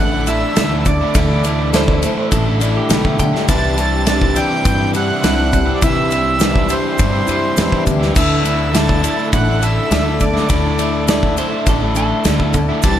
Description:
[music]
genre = folk rock and heartland rock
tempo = 103 BPM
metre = 4/4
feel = straight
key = unclear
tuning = A4 = 440 Hz
[part]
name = accordion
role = melody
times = 0.0-13.0 s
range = C5 to A5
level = -21 LUFS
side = right 3 dB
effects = none
[part]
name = picked plugged-in swing-style acoustic guitar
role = accompaniment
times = 0.0-13.0 s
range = C3 to E4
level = -21 LUFS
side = left 4 dB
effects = none
[part]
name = tonewheel organ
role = sustained chords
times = 0.0-13.0 s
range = D4 to C6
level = -29 LUFS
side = right 1 dB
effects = none
[part]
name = crunchy overdriven guitar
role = riff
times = 0.0-13.0 s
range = C3 to E4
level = -21 LUFS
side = right 1 dB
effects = none
[part]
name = upright bass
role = bass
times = 0.0-13.0 s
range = A1 to G2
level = -20 LUFS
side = equal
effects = none
[part]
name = loose indie drum kit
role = drums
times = 0.3-13.0 s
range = crash cymbal, kick drum, ride cymbal, snare drum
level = -18 LUFS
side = equal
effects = none
[part]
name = egg shaker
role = percussion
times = 0.3-13.0 s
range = none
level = -30 LUFS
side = right 15 dB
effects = none
[part]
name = twelve-string electric guitar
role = second line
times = 1.8-3.5, 11.1-12.7 s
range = G4 to D5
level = -24 LUFS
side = right 3 dB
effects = none
[sound]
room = light reverb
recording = none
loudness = -13 LUFS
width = side -10 dB against mid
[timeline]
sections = 0.0-13.0 A section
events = none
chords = 0.0 Dsus2; 3.5 Cadd9; 8.2 Dsus2

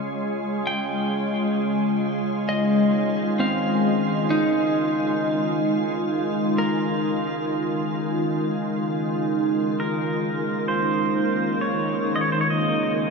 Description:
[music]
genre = ambient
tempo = 66 BPM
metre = 4/4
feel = straight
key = unclear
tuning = A4 = 440 Hz
[part]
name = soft additive organ-like pad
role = sustained chords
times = 0.0-13.1 s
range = Db3 to Ab4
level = -23 LUFS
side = equal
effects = ensemble chorus, built-in reverb
[part]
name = analog drone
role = drone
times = 0.0-13.1 s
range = Db3 to Ab3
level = -29 LUFS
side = equal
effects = chorus
[part]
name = clean electric guitar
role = arpeggios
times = 0.7-9.1 s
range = C4 to G5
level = -27 LUFS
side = right 1 dB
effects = diffuse ambient delay
[part]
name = pedal steel guitar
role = melody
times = 9.8-13.1 s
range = Bb4 to Eb5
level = -25 LUFS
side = right 1 dB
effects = diffuse ambient delay
[sound]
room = wet huge ambient reverb, RT60 8.2 s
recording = in a vast, echoing space, small room ambience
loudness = -21 LUFS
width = side -4 dB against mid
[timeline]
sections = 0.0-13.1 A section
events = none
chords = 0.0 Db; 2.5 Absus2

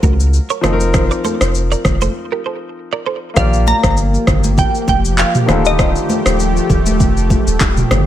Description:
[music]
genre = afrobeats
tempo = 99 BPM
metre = 4/4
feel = swing 55% on 16ths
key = Bb major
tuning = A4 = 436 Hz
[part]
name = clear baby grand piano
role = accompaniment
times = 0.0-8.1 s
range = D3 to D5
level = -22 LUFS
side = left 4 dB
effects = none
[part]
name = direct-recorded clean electric guitar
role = riff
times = 0.0-3.2 s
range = F4 to D5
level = -22 LUFS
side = right 8 dB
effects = analog chorus, digital delay
[part]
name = punchy sub bass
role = bass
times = 0.0-8.1 s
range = Eb1 to Db2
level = -16 LUFS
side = equal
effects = none
[part]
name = afro-pop drum kit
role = drums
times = 0.0-8.1 s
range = handclaps, kick drum, rim click, shaker, toms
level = -16 LUFS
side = equal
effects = overdrive
[part]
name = congas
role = percussion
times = 0.0-8.1 s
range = none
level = -22 LUFS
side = right 1 dB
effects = none
[part]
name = glassy wavetable pluck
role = melody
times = 3.4-6.8 s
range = Eb5 to Bb5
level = -18 LUFS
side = right 1 dB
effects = chorus, digital delay
[part]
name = lush unison pad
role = sustained chords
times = 4.0-8.1 s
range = F3 to G4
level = -20 LUFS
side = equal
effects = chorus, sidechain pumping
[sound]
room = little or no reverb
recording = none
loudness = -12 LUFS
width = side -12 dB against mid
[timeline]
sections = 0.0-3.4 A section; 3.4-8.1 B section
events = break 2.2-3.4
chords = 0.0 Gbmaj9; 0.6 F7sus4; 3.4 Bb6; 5.5 Ebmaj9#11

